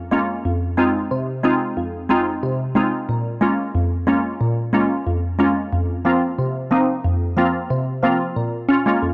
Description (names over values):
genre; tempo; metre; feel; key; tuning
dancehall; 91 BPM; 4/4; straight; Bb minor; A4 = 440 Hz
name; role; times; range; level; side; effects
glassy wavetable pluck; solo; 0.0-9.1 s; F2 to F4; -20 LUFS; equal; chorus
room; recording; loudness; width
light reverb; dry, gritty hardware recording; -20 LUFS; mono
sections
0.0-8.4 A section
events
none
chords
0.5 Fm7; 3.1 Bbm7; 5.7 Fsus4; 8.4 Bbm7